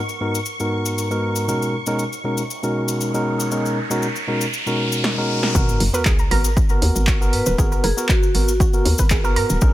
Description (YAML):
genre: deep house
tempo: 118 BPM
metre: 4/4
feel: swing 53% on 16ths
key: G# minor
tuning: A4 = 439 Hz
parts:
  - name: soft string machine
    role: texture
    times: 0.0-5.0 s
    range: C#6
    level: -32 LUFS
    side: equal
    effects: ensemble chorus, sidechain pumping
  - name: cabasa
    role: percussion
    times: 0.1-9.7 s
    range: none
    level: -30 LUFS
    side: left 6 dB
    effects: none
  - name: tine electric piano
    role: stabs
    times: 0.2-9.7 s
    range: G#2 to A#4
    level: -22 LUFS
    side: equal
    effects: vintage 12-bit sampler grit, sidechain pumping, ping-pong delay
  - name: riser and sub drop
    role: sound effects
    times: 2.5-7.6 s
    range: none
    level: -27 LUFS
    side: right 1 dB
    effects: none
  - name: punchy analog drum machine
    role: drums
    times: 5.0-9.5 s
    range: handclaps, hi-hat, snare drum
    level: -24 LUFS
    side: right 1 dB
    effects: overdrive
  - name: warbly dusty pluck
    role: arpeggios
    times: 5.5-9.4 s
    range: F#4 to B4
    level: -28 LUFS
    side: right 4 dB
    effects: chorus, sidechain pumping, ping-pong delay
  - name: hollow knocking FM bass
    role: bass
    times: 5.5-9.7 s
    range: D#1 to G#2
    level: -21 LUFS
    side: equal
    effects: tube saturation, sidechain pumping
  - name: electronic kick drum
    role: drums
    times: 5.5-9.7 s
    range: none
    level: -18 LUFS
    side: equal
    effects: overdrive
  - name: vibraphone with medium hard mallets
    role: melody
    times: 7.3-8.8 s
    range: F#4 to B4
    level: -26 LUFS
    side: left 1 dB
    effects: ping-pong delay
room: light reverb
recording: none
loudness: -17 LUFS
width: side -15 dB against mid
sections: 0.0-5.5 A section; 5.5-9.7 B section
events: riser 2.5-5.5; drum fill 5.0-5.5; drop 5.5-9.7; impact 5.5-7.6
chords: 0.0 G#m9; 1.5 Bmaj13; 5.5 G#m9